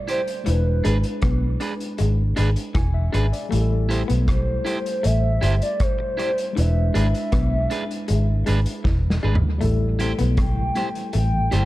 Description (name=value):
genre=lovers rock reggae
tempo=79 BPM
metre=4/4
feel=straight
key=A minor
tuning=A4 = 440 Hz
part: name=hollow clarinet-like synth lead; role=melody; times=0.0-11.7 s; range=B4 to G5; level=-27 LUFS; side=equal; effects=chorus, tape echo
part: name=tine electric piano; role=accompaniment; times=0.0-11.7 s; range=G3 to G#5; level=-30 LUFS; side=left 2 dB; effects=medium stereo tremolo, tape echo
part: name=electric guitar at the edge of break-up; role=stabs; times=0.1-11.6 s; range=D4 to C5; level=-31 LUFS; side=right 3 dB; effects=none
part: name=vintage drum kit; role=drums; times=0.1-11.7 s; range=hi-hat, kick drum, rim click, snare drum, toms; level=-26 LUFS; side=equal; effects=none
part: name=electric guitar through a small old amp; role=riff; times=0.5-11.6 s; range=E3 to B3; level=-30 LUFS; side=left 4 dB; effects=none
part: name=vintage muted fingered electric bass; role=bass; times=0.5-11.7 s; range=E1 to B1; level=-20 LUFS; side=equal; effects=none
part: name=mellow tonewheel organ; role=accompaniment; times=9.8-11.6 s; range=A2 to C4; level=-33 LUFS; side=right 2 dB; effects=none
room=small room ambience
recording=dark, warm production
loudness=-19 LUFS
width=side -16 dB against mid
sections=0.0-11.7 A section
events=drum fill 8.9-9.6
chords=0.5 E7; 3.5 Am7; 6.6 E7; 9.6 Am7